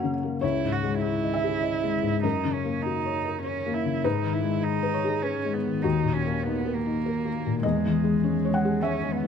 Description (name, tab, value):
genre	neoclassical piano and strings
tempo	100 BPM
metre	3/4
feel	rubato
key	C# dorian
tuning	A4 = 440 Hz
part	felt-muted upright piano	accompaniment	0.0-9.3 s	C#2 to F#5	-26 LUFS	left 5 dB	none
part	warm cello	second line	0.4-9.3 s	G#3 to F#4	-28 LUFS	right 7 dB	none
room	light reverb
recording	close, detailed microphones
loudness	-24 LUFS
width	side -7 dB against mid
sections	0.4-9.3 A section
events	none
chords	0.4 C#madd9; 2.2 F#; 4.0 G#m; 5.8 D#m; 7.6 C#madd9/E